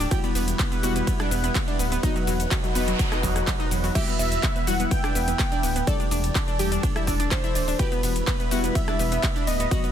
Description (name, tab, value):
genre	progressive house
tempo	125 BPM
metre	4/4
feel	straight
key	E minor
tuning	A4 = 439 Hz
part	lush unison pad	sustained chords	0.0-9.9 s	E3 to B5	-32 LUFS	left 1 dB	chorus, phaser, sidechain pumping
part	analog pluck	arpeggios	0.0-9.9 s	F#3 to A4	-30 LUFS	equal	chorus, sidechain pumping, tape echo
part	deep mellow chord stab	stabs	0.0-9.9 s	F#3 to G4	-32 LUFS	left 3 dB	chorus, sidechain pumping, tape echo
part	dark detuned saw bass	bass	0.0-9.7 s	D1 to E1	-27 LUFS	equal	tube saturation, sidechain pumping
part	big-room dance drum kit	drums	0.0-9.9 s	crash cymbal, handclaps, hi-hat, ride cymbal, rim click, shaker	-30 LUFS	right 1 dB	sidechain pumping on hats, sidechain pumping on cymbals, sidechain pumping on perc
part	electronic kick drum	drums	0.1-9.8 s	none	-25 LUFS	equal	none
part	noise sweep	sound effects	2.4-4.0 s	none	-34 LUFS	right 4 dB	none
part	plucky unison lead	melody	4.0-9.9 s	B4 to G5	-29 LUFS	right 1 dB	sidechain pumping, ping-pong delay
room	digital ambience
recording	dense, heavily limited modern master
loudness	-21 LUFS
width	side -9 dB against mid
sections	0.0-9.9 A section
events	noise sweep 2.4-4.0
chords	0.1 Emadd9; 2.0 B/E; 4.0 Emadd9; 5.9 Dsus4/E; 7.8 Emadd9